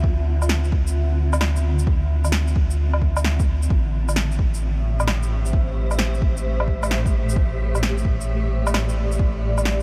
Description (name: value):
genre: future garage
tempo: 131 BPM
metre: 4/4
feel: swing 66% on 16ths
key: D minor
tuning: A4 = 441 Hz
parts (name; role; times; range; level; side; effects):
- granular cloud pad; sustained chords; 0.0-9.8 s; A2 to E5; -31 LUFS; equal; built-in reverb, vintage 12-bit sampler grit, sidechain pumping
- warm sub bass; bass; 0.0-9.8 s; A1 to D2; -24 LUFS; equal; sidechain pumping
- electronic kick drum; drums; 0.0-9.3 s; none; -23 LUFS; equal; none
- electronic shaker, woodblock and snare drum; drums; 0.4-9.8 s; none; -30 LUFS; equal; none
- wind-like tuned noise texture; texture; 4.6-9.8 s; E5; -40 LUFS; equal; built-in reverb, lush chorus
room: light reverb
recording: none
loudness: -21 LUFS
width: mono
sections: 0.0-9.8 A section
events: none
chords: 0.0 Dm9; 3.7 Am7